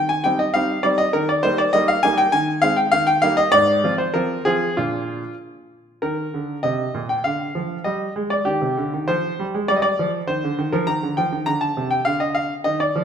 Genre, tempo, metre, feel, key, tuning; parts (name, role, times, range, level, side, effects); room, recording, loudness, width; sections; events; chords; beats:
classical-period piano sonatina; 100 BPM; 2/4; straight; Eb major; A4 = 437 Hz
bright baby grand piano; solo; 0.0-13.0 s; Ab2 to Bb5; -18 LUFS; equal
wet recital hall reverb, RT60 1.7 s; -18 LUFS; side -8 dB against mid
0.0-6.0 A section; 6.0-13.0 B section
0.0 Cm/Eb; 1.1 Eb; 2.3 Ab/Eb; 2.9 Eb; 3.5 Fm/Ab; 4.8 Bb; 6.0 Eb5; 7.2 Dm; 7.9 Eb/G; 8.5 Cm; 9.7 G5; 10.3 Cm; 10.9 Cm13; 12.1 N.C.
0.55 | 1.14 1.74 | 2.33 2.93 | 3.53 4.14 | 4.77 5.40 | 6.03 6.64 | 7.25 7.86 | 8.46 9.09 | 9.69 10.28 | 10.87 11.47 | 12.06 12.65